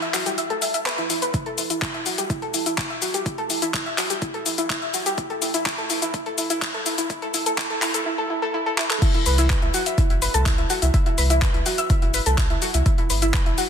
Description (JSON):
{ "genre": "progressive house", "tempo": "125 BPM", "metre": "4/4", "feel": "straight", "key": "unclear", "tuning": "A4 = 440 Hz", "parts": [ { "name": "soft round pluck", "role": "arpeggios", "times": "0.0-13.6 s", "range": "E4 to E6", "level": "-24 LUFS", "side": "equal", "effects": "lush chorus, sidechain pumping, ping-pong delay" }, { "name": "deep house drum kit", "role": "drums", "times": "0.0-13.7 s", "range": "cabasa, crash cymbal, handclaps, hi-hat", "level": "-25 LUFS", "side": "left 3 dB", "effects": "overdrive, high-pass filter on snare, high-pass filter on hats, high-pass filter on perc, high-pass filter on cymbals, high-pass filter on room" }, { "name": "electronic kick drum", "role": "drums", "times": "1.3-13.4 s", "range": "none", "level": "-22 LUFS", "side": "equal", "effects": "overdrive" }, { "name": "saturated sub bass", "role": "bass", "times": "9.3-13.5 s", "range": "G1 to C2", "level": "-22 LUFS", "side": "equal", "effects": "sidechain pumping" } ], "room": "moderate concert hall reverb, RT60 2.0 s", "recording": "dense, heavily limited modern master, high-pass filter", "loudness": "-20 LUFS", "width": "side -8 dB against mid", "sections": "0.0-9.0 A section; 9.0-13.7 B section", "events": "build-up 0.0-9.0; drum fill 8.8; drop 9.0-13.7", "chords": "0.0 Gmaj7 (rootless); 1.3 N.C.; 5.2 Esus4; 9.0 C6; 12.9 Gmaj7" }